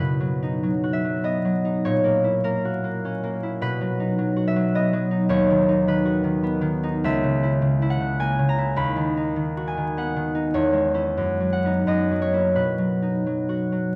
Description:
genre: classical, solo harp piece.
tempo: 83-109 BPM.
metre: 3/4.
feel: rubato.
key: B major.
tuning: A4 = 438 Hz.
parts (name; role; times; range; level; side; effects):
concert harp; solo; 0.0-14.0 s; C#2 to B5; -23 LUFS; equal; none.
room: moderate concert hall reverb, RT60 2.4 s.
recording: vinyl crackle.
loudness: -23 LUFS.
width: mono.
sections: 0.0-14.0 A section.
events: none.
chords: 0.0 B; 1.8 F#7/A#; 3.6 B; 5.3 B/D#; 7.0 A#dim/C#; 8.8 B/D#; 10.6 C#m/E; 11.2 B/F#; 11.9 F#7; 12.6 B.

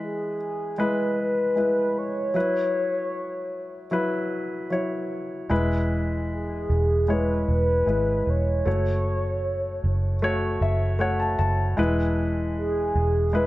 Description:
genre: pop.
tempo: 77 BPM.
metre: 4/4.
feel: straight.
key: E major.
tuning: A4 = 438 Hz.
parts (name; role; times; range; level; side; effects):
mellow horn-like synth lead; melody; 0.0-13.5 s; G#4 to C#5; -26 LUFS; equal; chorus.
warm grand piano; accompaniment; 0.0-13.5 s; E3 to A5; -26 LUFS; left 1 dB; none.
vintage muted fingered electric bass; bass; 5.5-13.5 s; E1 to G#1; -24 LUFS; right 1 dB; none.
room: light reverb, studio reverb.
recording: none.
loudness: -22 LUFS.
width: side -17 dB against mid.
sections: 0.0-13.5 A section.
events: grand piano fill 10.2-11.8.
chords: 0.0 E; 2.4 Bsus4/F#; 5.5 E; 8.7 F#m; 11.8 E.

